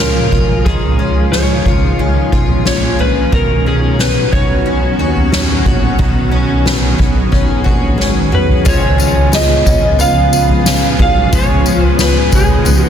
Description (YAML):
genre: dream pop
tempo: 90 BPM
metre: 4/4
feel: straight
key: Db mixolydian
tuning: A4 = 440 Hz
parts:
  - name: electric slide guitar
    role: melody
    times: 0.0-12.9 s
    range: Ab4 to F5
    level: -18 LUFS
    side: right 1 dB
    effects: tape echo
  - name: granular cloud pad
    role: sustained chords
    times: 0.0-12.9 s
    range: Bb2 to Ab4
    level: -18 LUFS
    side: left 1 dB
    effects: built-in reverb
  - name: picked twelve-string acoustic guitar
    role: arpeggios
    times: 0.0-12.9 s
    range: Eb3 to Ab4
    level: -20 LUFS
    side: left 3 dB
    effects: wide subtle chorus, tape echo
  - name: fat analog bass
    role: bass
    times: 0.0-12.9 s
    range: Ab1 to Eb2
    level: -17 LUFS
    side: equal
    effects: none
  - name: soft-mallet drum kit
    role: drums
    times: 0.3-12.8 s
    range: crash cymbal, kick drum, snare drum, tambourine, toms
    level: -14 LUFS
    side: equal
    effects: none
room: light reverb, small room reverb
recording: dense, heavily limited modern master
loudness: -10 LUFS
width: side -9 dB against mid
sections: 0.0-8.7 A section; 8.7-12.9 B section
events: drum fill 8.0-8.7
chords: 0.0 Bbm7; 0.7 Dbadd9; 3.3 Cbadd9; 8.7 Db7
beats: | 0.66 1.33 1.99 2.66 | 3.33 3.99 4.66 5.33 | 5.99 6.66 7.33 7.99 | 8.66 9.33 9.99 10.66 | 11.33 11.99 12.66